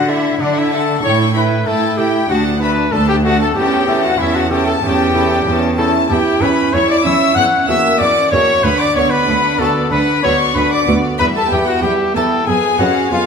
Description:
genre	classical, baroque-style concerto movement with solo episodes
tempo	95 BPM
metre	4/4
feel	straight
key	B minor from 6.1 s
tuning	A4 = 440 Hz
part	clear chamber violin section	melody	0.0-13.3 s	C#5 to A5	-26 LUFS	left 5 dB	none
part	clear trumpet	melody	0.0-13.3 s	D4 to F#5	-17 LUFS	left 2 dB	none
part	rich chamber violin section	second line	0.0-13.3 s	D5 to F#6	-19 LUFS	left 3 dB	none
part	lute	accompaniment	0.0-13.3 s	D2 to G#4	-22 LUFS	right 1 dB	none
part	rich chamber viola section	accompaniment	0.0-13.3 s	G3 to E4	-20 LUFS	right 4 dB	none
part	clear chamber cello section	bass	0.0-13.2 s	D2 to D3	-19 LUFS	right 2 dB	none
room	wet recital hall reverb, RT60 1.9 s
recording	minimal, uncompressed stereo recording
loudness	-12 LUFS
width	side -6 dB against mid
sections	0.0-13.3 A section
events	none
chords	0.0 D; 1.0 A5; 2.3 D; 3.6 A7/E; 6.1 Em6; 7.4 F#7/E; 8.6 Bm/D; 11.2 Em; 12.5 C#7/E#

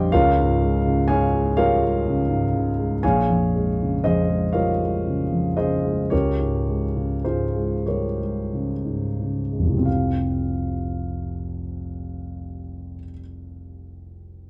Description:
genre	classical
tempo	28-42 BPM (dotted quarters)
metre	6/8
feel	rubato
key	F minor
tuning	A4 = 440 Hz
part	dark grand piano	accompaniment	0.0-14.5 s	F1 to Ab5	-23 LUFS	equal	none
room	moderate large studio reverb, RT60 0.9 s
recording	dark, warm production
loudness	-22 LUFS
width	mono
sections	0.0-9.9 A section; 9.9-13.7 B section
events	slowing down 1.6-9.9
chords	0.1 Db; 3.0 Bbm7; 6.1 Db; 9.9 Fsus2

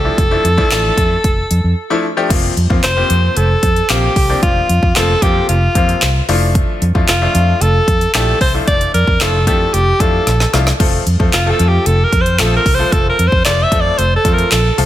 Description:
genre	dance-pop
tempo	113 BPM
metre	4/4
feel	straight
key	unclear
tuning	A4 = 440 Hz
part	edgy alto saxophone	melody	0.0-14.9 s	F4 to E5	-16 LUFS	equal	ping-pong delay, slapback echo
part	bright grand piano	accompaniment	0.0-14.9 s	C3 to E5	-20 LUFS	left 3 dB	sidechain pumping, slapback echo
part	vintage muted fingered electric bass	bass	0.0-14.9 s	F1 to F2	-15 LUFS	equal	sidechain pumping
part	deep house drum kit	drums	0.2-14.9 s	crash cymbal, handclaps, hi-hat, kick drum, snare drum	-16 LUFS	equal	none
room	light reverb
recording	none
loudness	-11 LUFS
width	side -13 dB against mid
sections	0.0-2.3 A section; 2.3-14.9 B section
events	drum fill 10.3-10.8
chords	0.0 Dmadd9/F; 2.3 Bbsus2/F; 6.3 Dmadd9/F; 10.8 F

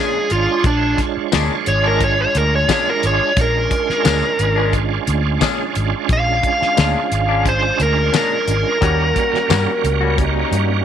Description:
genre	straight-eighth soul blues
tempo	88 BPM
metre	4/4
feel	straight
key	unclear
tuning	A4 = 439 Hz
part	dark smooth lead guitar	melody	0.0-10.2 s	D4 to F5	-18 LUFS	equal	overdrive
part	bright tonewheel organ	accompaniment	0.0-10.8 s	G3 to C#5	-22 LUFS	right 13 dB	slow rotary speaker, chorus vibrato
part	direct-recorded clean electric guitar	stabs	0.0-10.2 s	Bb2 to F#4	-25 LUFS	left 10 dB	lush chorus
part	vintage muted fingered electric bass	bass	0.3-10.8 s	Ab1 to G2	-20 LUFS	equal	none
part	damped 70s drum kit	drums	0.3-10.7 s	hi-hat, kick drum, snare drum, tambourine	-20 LUFS	left 3 dB	none
part	clear horn section	sustained chords	8.8-10.8 s	G3 to F#4	-28 LUFS	left 9 dB	none
room	light reverb, studio ambience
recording	1960s-style stereo with parts hard left and right, faint mains hum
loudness	-14 LUFS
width	side -9 dB against mid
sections	0.0-10.8 A section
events	lead electric guitar solo 0.0-10.8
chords	0.0 Bb7#9; 8.8 Eb7#9

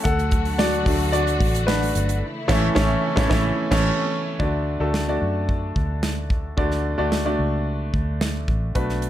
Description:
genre	piano-driven pop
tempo	110 BPM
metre	4/4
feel	straight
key	D major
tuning	A4 = 440 Hz
part	bright upright piano	accompaniment	0.0-9.1 s	B2 to F#5	-23 LUFS	equal	none
part	rich studio string section	sustained chords	0.0-4.4 s	C#3 to F#4	-30 LUFS	equal	none
part	vintage muted fingered electric bass	bass	0.1-9.1 s	G1 to F#2	-25 LUFS	equal	none
part	modern studio drum kit	drums	0.1-9.1 s	crash cymbal, hi-hat, kick drum, snare drum	-24 LUFS	equal	none
room	light reverb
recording	none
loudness	-19 LUFS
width	side -12 dB against mid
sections	0.0-4.4 A section; 4.4-9.1 B section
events	upright piano solo 0.0-4.4; band accent 2.2-4.4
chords	0.0 D; 2.2 A; 4.4 D

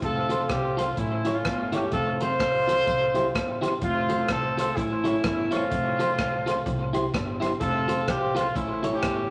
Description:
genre	ska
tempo	127 BPM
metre	4/4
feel	swing 59% on 8ths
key	F major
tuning	A4 = 440 Hz
part	warm horn section	melody	0.0-9.3 s	A3 to C5	-28 LUFS	equal	none
part	upright bass	bass	0.0-9.3 s	F1 to C2	-35 LUFS	equal	none
part	swinging big-band drum kit	drums	0.0-9.2 s	hi-hat, kick drum, rim click	-34 LUFS	equal	dub echo
part	clean electric guitar	accompaniment	0.3-8.9 s	E4 to C#5	-31 LUFS	equal	dub echo
room	wet club reverb, RT60 0.6 s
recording	none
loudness	-26 LUFS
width	mono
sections	0.0-9.3 A section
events	none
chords	0.0 F; 1.0 A; 1.9 F; 2.9 C; 3.8 F; 4.8 A; 5.7 F; 6.7 C; 7.6 F; 8.6 A

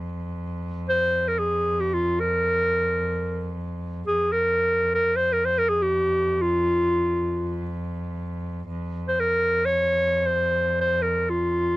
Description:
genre	Turkish makam ensemble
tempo	free time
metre	none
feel	none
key	F makam ussak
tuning	A4 = 438 Hz
part	clear cello	drone	0.0-11.8 s	F2	-30 LUFS	right 1 dB	none
part	bright clarinet	melody	0.9-11.8 s	F4 to Db5	-21 LUFS	equal	none
room	little or no reverb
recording	dry, close 1970s-style studio recording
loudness	-21 LUFS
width	side -18 dB against mid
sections	0.0-8.7 A section; 8.7-11.8 A section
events	none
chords	none

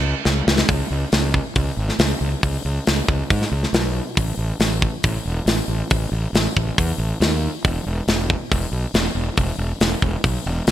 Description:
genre	heavy metal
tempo	138 BPM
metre	4/4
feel	straight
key	C# minor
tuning	A4 = 439 Hz
part	fuzz fingered electric bass	bass	0.0-10.7 s	E1 to G#2	-22 LUFS	equal	overdrive
part	tight metal drum kit	drums	0.3-10.7 s	hi-hat, kick drum, snare drum	-20 LUFS	equal	none
room	light reverb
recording	bright 1980s-style digital production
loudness	-18 LUFS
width	side -12 dB against mid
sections	0.7-10.7 A section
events	drum fill 0.2-0.7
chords	none

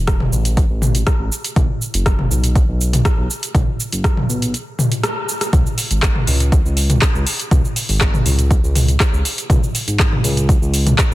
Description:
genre	afro house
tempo	121 BPM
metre	4/4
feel	straight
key	C# minor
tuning	A4 = 438 Hz
part	smooth synth bass	bass	0.0-11.1 s	E1 to C#2	-18 LUFS	equal	sidechain pumping
part	deep house drum kit	drums	0.1-11.1 s	cabasa, handclaps, hi-hat, rim click, toms	-19 LUFS	equal	overdrive
part	electronic kick drum	drums	0.1-11.1 s	none	-15 LUFS	equal	none
room	little or no reverb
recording	dense, heavily limited modern master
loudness	-14 LUFS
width	side -17 dB against mid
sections	0.0-5.5 A section; 5.5-11.1 B section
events	band accent 5.0; drop 5.5-11.1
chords	none

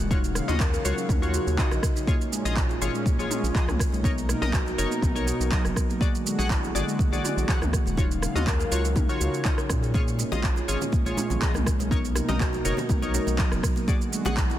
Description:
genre	afro house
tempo	122 BPM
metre	4/4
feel	straight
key	Bb phrygian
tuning	A4 = 440 Hz
part	warm analog pad	sustained chords	0.0-14.6 s	Bb2 to F5	-34 LUFS	right 1 dB	chorus, sidechain pumping
part	kalimba	arpeggios	0.0-14.6 s	E3 to Eb5	-31 LUFS	equal	sidechain pumping, digital delay
part	round analog bass	bass	0.0-14.5 s	Eb1 to Bb2	-28 LUFS	equal	tube saturation, sidechain pumping
part	deep house drum kit	drums	0.0-14.6 s	handclaps, rim click, shaker, toms	-32 LUFS	right 1 dB	overdrive
part	warm analog keys	stabs	0.1-14.3 s	D#4 to F#5	-32 LUFS	left 3 dB	chorus, sidechain pumping, digital delay
part	electronic kick drum	drums	0.1-14.5 s	none	-25 LUFS	equal	none
part	bongos	percussion	9.9-14.4 s	none	-38 LUFS	left 6 dB	none
part	congas	percussion	10.2-14.6 s	none	-35 LUFS	right 5 dB	none
room	light reverb, digital ambience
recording	dense, heavily limited modern master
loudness	-22 LUFS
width	side -12 dB against mid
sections	0.0-14.6 A section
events	none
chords	0.1 Ebm9; 2.1 Bbm7; 4.0 Bmaj7; 6.0 Bbaug7; 8.0 Ebm9; 9.9 Bbm7; 11.9 Bmaj7; 13.9 Bbaug7

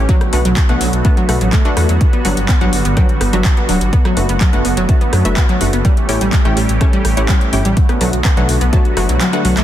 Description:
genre	progressive house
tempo	125 BPM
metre	4/4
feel	straight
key	unclear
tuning	A4 = 437 Hz
part	filtered supersaw swell	sustained chords	0.0-9.6 s	D3 to G4	-23 LUFS	right 2 dB	sidechain pumping
part	analog pluck	arpeggios	0.0-9.6 s	F#3 to F#4	-19 LUFS	equal	chorus, sidechain pumping, dub echo
part	dark detuned saw bass	bass	0.0-9.6 s	D1 to F#2	-17 LUFS	equal	sidechain pumping
part	deep house drum kit	drums	0.1-9.6 s	handclaps, hi-hat, rim click	-22 LUFS	equal	overdrive, sidechain pumping on hats, small room ambience, sidechain pumping on cymbals
part	electronic kick drum	drums	0.1-8.8 s	none	-13 LUFS	equal	overdrive, small room ambience
part	wide unison pluck	stabs	0.3-9.6 s	G3 to A5	-21 LUFS	left 1 dB	sidechain pumping, dub echo
part	swell	sound effects	8.9-9.6 s	none	-30 LUFS	left 2 dB	none
room	digital ambience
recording	dense, heavily limited modern master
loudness	-11 LUFS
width	side -12 dB against mid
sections	0.0-9.6 A section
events	kick drops out 9.2-9.6; drum fill 9.2-9.6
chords	0.1 Bm7; 2.0 Gmaj7; 3.9 D6/F#; 5.8 A7; 7.8 Bm7

